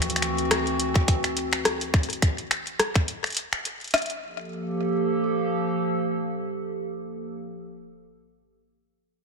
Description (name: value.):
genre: IDM.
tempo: 105 BPM.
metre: 4/4.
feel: swing 56% on 16ths.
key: G dorian.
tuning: A4 = 441 Hz.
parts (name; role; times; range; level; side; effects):
warbly tape-like pad; sustained chords; 0.0-7.3 s; D2 to A4; -27 LUFS; right 1 dB; chorus, built-in reverb.
electro analog drum machine; drums; 0.0-4.2 s; finger snaps, hi-hat, rim click; -25 LUFS; left 1 dB; ping-pong delay.
electronic kick drum; drums; 1.0-3.1 s; none; -23 LUFS; equal; none.
room: moderate lush hall reverb, RT60 2.0 s.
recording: none.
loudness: -23 LUFS.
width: side -4 dB against mid.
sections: 0.0-4.2 A section; 4.2-6.5 B section.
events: none.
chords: 0.0 D9; 4.2 Gm9.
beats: 0.22 0.80 1.37 | 1.94 2.51 3.08 3.65 | 4.22 4.79 5.37 5.94.